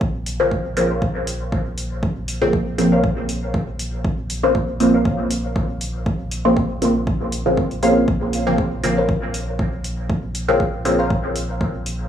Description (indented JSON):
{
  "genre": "dub techno",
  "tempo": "119 BPM",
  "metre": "4/4",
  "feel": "swing 54% on 16ths",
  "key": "Bb minor",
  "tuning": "A4 = 440 Hz",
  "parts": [
    { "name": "soft dub sub bass", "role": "bass", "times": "0.0-12.1 s", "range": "Bb1", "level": "-28 LUFS", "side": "equal", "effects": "tube saturation, sidechain pumping" },
    { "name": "electronic kick drum", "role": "drums", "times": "0.0-11.7 s", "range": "none", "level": "-24 LUFS", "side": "equal", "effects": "overdrive" },
    { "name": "electronic hi-hat", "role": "drums", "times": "0.3-12.0 s", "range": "none", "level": "-29 LUFS", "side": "left 1 dB", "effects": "overdrive" },
    { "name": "filtered dub chord stab", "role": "stabs", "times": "0.4-11.0 s", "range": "Db3 to C4", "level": "-19 LUFS", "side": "equal", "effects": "phaser, sidechain pumping, dub echo" },
    { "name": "filtered dub chord stab", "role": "riff", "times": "0.9-11.1 s", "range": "Bb4 to F5", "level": "-26 LUFS", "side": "left 1 dB", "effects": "phaser, ensemble chorus, sidechain pumping, dub echo" }
  ],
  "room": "moderate echo chamber reverb, RT60 2.0 s",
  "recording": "dry, gritty hardware recording, small room reverb",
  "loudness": "-18 LUFS",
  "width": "side -9 dB against mid",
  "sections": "0.0-12.1 A section",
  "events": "none",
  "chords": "0.0 Bbmadd9"
}